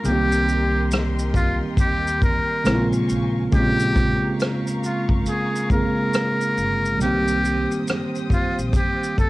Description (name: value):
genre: lo-fi hip hop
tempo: 69 BPM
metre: 4/4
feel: swing 63% on 16ths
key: Bb dorian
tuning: A4 = 440 Hz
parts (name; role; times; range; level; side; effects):
- tine electric piano; accompaniment; 0.0-9.3 s; Db3 to Ab4; -23 LUFS; right 1 dB; medium stereo tremolo, cassette tape
- warm studio string section; sustained chords; 0.0-9.3 s; Bb4 to Eb6; -36 LUFS; left 1 dB; none
- vintage brush drum kit; drums; 0.0-9.3 s; hi-hat, kick drum, rim click, shaker; -22 LUFS; equal; none
- trumpet with metal mute; melody; 0.1-9.3 s; F4 to Bb4; -24 LUFS; equal; cassette tape, tape echo
- upright bass; bass; 0.1-8.7 s; G1 to Eb2; -26 LUFS; equal; tube saturation
room: small room ambience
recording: home recording on cassette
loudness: -18 LUFS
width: side -19 dB against mid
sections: 0.0-3.5 A section; 3.5-9.3 B section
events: none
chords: 0.0 Cm7; 2.7 Bbm7; 7.0 Cm7